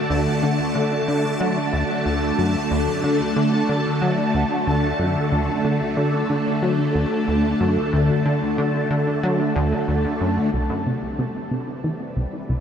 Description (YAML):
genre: ambient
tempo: 92 BPM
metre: 4/4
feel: straight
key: D major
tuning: A4 = 439 Hz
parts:
  - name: phased string machine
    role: sustained chords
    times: 0.0-12.6 s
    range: C3 to E5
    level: -21 LUFS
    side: equal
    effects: ensemble chorus, phaser
  - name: bubbling stepped-filter texture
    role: texture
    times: 0.0-10.5 s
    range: A5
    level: -31 LUFS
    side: right 1 dB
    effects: chorus, built-in reverb
  - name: plucky analog bass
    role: riff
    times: 0.1-12.6 s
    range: C2 to F#3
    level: -23 LUFS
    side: equal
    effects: lush chorus, tape echo
  - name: warbly dusty pluck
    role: arpeggios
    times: 10.5-12.6 s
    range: B3 to G4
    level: -44 LUFS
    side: left 2 dB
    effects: none
room: wet huge ambient reverb, RT60 7.8 s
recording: dreamy mix soaked in reverb, faint mains hum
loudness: -19 LUFS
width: side -8 dB against mid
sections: 0.0-10.5 A section; 10.5-12.6 B section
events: filter sweep on analog synth bass 0.0-10.5, 10.5-12.6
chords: 0.0 D; 10.5 Cmaj7